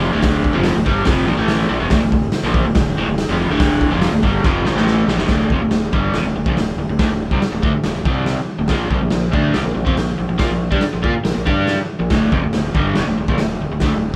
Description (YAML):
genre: garage rock duo or trio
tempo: 141 BPM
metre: 4/4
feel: straight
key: D minor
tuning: A4 = 440 Hz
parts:
  - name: crunchy overdriven guitar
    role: riff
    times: 0.0-14.1 s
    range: D2 to G4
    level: -20 LUFS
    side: equal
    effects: none
  - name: fuzz fingered electric bass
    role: bass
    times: 0.0-14.2 s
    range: D1 to Bb2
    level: -27 LUFS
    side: equal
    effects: overdrive, tube saturation
  - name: raw garage drum kit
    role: drums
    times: 0.2-14.2 s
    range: hi-hat, kick drum, snare drum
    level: -22 LUFS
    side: equal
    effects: none
room: light reverb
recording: band playing live in one room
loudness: -17 LUFS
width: mono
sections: 0.0-5.3 A section; 5.3-14.2 B section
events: drum fill 4.4-5.3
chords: 0.0 Dm; 5.3 D5; 8.7 Bb5; 12.1 Dm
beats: | 0.24 0.66 1.08 1.50 | 1.92 2.34 2.76 3.18 | 3.60 4.02 4.44 4.86 | 5.29 5.71 6.13 6.56 | 6.98 7.41 7.83 8.26 | 8.69 9.12 9.54 9.97 | 10.40 10.82 11.25 11.68 | 12.11 12.53 12.96 13.39 | 13.82